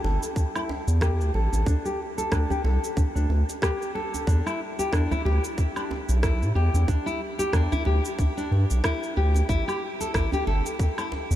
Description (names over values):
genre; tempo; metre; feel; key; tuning
organic downtempo; 92 BPM; 4/4; swing 57% on 16ths; E minor; A4 = 440 Hz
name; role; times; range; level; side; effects
nylon-string guitar; arpeggios; 0.0-11.1 s; D4 to A4; -28 LUFS; left 1 dB; low-pass filter, ping-pong delay
round analog bass; bass; 0.0-11.4 s; G1 to A2; -22 LUFS; equal; sidechain pumping
djembe; percussion; 0.0-11.3 s; none; -34 LUFS; right 2 dB; none
electronic shaker, woodblock and rim click; drums; 0.2-11.4 s; none; -34 LUFS; right 1 dB; none
electronic kick drum; drums; 0.4-10.9 s; none; -24 LUFS; equal; none
room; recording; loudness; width
moderate huge ambient reverb, RT60 7.2 s; dreamy mix soaked in reverb; -22 LUFS; side -12 dB against mid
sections
0.0-11.4 A section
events
filter sweep on nylon-string guitar 0.0-11.4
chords
0.0 A5; 1.7 Dsus4; 4.3 Em7; 9.5 A5